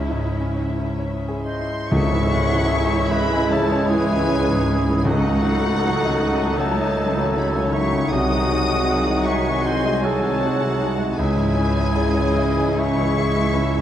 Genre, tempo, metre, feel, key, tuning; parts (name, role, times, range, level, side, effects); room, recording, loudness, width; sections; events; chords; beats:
classical, romantic movement for piano and orchestra; 78 BPM; 4/4; uneven beats, rubato; C# minor; A4 = 440 Hz
clear concert grand piano; melody; 0.0-13.8 s; B#1 to A5; -24 LUFS; left 1 dB
rich studio violin section; melody; 0.0-13.8 s; E5 to D#6; -29 LUFS; left 5 dB
rich studio violin section; second line; 0.0-13.8 s; E4 to G#5; -34 LUFS; equal
rich studio viola section; accompaniment; 0.0-13.8 s; B#2 to F#4; -28 LUFS; right 1 dB
dark tuba; bass; 0.0-13.8 s; B#1 to C#2; -28 LUFS; right 2 dB
rich studio cello section; bass; 0.0-13.8 s; B#1 to E4; -29 LUFS; right 1 dB
rich studio double bass section; bass; 0.0-13.8 s; B#1 to C#2; -29 LUFS; right 2 dB
mellow hollow silver concert flute; second line; 1.4-13.8 s; A4 to F#5; -29 LUFS; left 1 dB
warm oboe; second line; 1.5-13.8 s; F#4 to D#5; -30 LUFS; right 1 dB
bright clarinet; second line; 1.9-13.8 s; D#4 to F#4; -32 LUFS; left 2 dB
warm bassoon; accompaniment; 1.9-13.8 s; G#3 to A3; -30 LUFS; right 3 dB
mellow French horn section; sustained chords; 1.9-13.8 s; G#3 to E4; -30 LUFS; left 4 dB
warm trombone section; sustained chords; 1.9-13.8 s; C#3 to G#3; -30 LUFS; right 1 dB
tam-tam; percussion; 1.9-5.0 s; -33 LUFS; left 1 dB
timpani; percussion; 1.9-6.2 s; C#3; -27 LUFS; left 1 dB
moderate scoring stage reverb, RT60 1.9 s; dark, warm production; -18 LUFS; side -10 dB against mid
0.0-1.9 A section; 1.9-13.8 B section
band accent 1.9-2.7
0.0 C#m; 5.1 D#m7b5/C#; 8.1 G#7/B#; 11.2 C#m
0.15 1.01 | 1.92 2.74 3.53 4.29 | 5.05 5.83 6.60 7.37 | 8.12 8.88 9.65 10.42 | 11.18 11.95 12.78 13.54